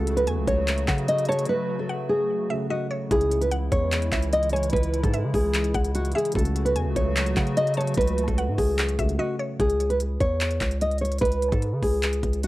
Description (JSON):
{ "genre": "hip hop, trap", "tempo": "148 BPM", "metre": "4/4", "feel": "half-time", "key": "C# minor", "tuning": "A4 = 438 Hz", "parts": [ { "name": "nylon-string guitar", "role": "melody", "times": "0.0-12.5 s", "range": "F#4 to D#5", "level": "-25 LUFS", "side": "equal", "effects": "tape echo" }, { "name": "dark concert grand piano", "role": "accompaniment", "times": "0.0-9.6 s", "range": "C#3 to F#4", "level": "-34 LUFS", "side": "equal", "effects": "none" }, { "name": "hollow soft pad", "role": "sustained chords", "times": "0.0-9.6 s", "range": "C#3 to F#4", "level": "-33 LUFS", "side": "equal", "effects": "chorus" }, { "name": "distorted 808-style bass", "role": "bass", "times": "0.0-12.5 s", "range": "C#2 to C#3", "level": "-26 LUFS", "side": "equal", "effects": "distortion" }, { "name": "trap drum kit", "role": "drums", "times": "0.1-12.5 s", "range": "handclaps, hi-hat, kick drum", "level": "-27 LUFS", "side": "equal", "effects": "none" }, { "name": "mallet-like synth pluck", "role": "second line", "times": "0.3-9.6 s", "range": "C#5 to A5", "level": "-35 LUFS", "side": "left 1 dB", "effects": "chorus, tape echo" } ], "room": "little or no reverb", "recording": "dry, gritty hardware recording", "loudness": "-22 LUFS", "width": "side -17 dB against mid", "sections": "0.0-9.6 A section; 9.6-12.5 B section", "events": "break 1.5-3.1, 9.2-9.6", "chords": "0.0 F#m/C#; 3.1 C#m; 6.4 F#m/C#; 9.6 C#m", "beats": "0.27 0.68 1.08 | 1.49 1.89 2.30 2.70 | 3.11 3.52 3.92 4.33 | 4.73 5.14 5.54 5.95 | 6.35 6.76 7.16 7.57 | 7.97 8.38 8.79 9.19 | 9.60 10.00 10.41 10.81 | 11.22 11.62 12.03 12.43" }